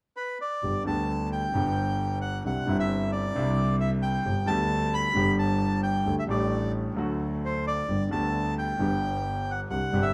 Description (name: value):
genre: tango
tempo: 132 BPM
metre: 4/4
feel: rubato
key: G major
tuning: A4 = 440 Hz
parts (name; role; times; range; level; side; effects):
- bandoneon; melody; 0.2-10.1 s; B4 to B5; -32 LUFS; equal; none
- warm concert grand piano; accompaniment; 0.6-10.1 s; G1 to G4; -31 LUFS; equal; none
- clear double bass; bass; 0.6-10.1 s; G1 to D2; -33 LUFS; equal; none
room: wet studio reverb, RT60 0.8 s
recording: none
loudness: -27 LUFS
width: mono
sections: 0.6-10.1 A section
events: none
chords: 0.0 N.C.; 0.6 G; 2.5 Cadd9; 4.3 G; 6.1 Dsus4; 7.0 D; 7.9 G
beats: 0.17 | 0.63 1.09 1.55 2.00 | 2.45 2.90 3.35 3.80 | 4.25 4.70 5.15 5.61 | 6.06 6.52 6.97 7.43 | 7.89 8.35 8.80 9.26 | 9.71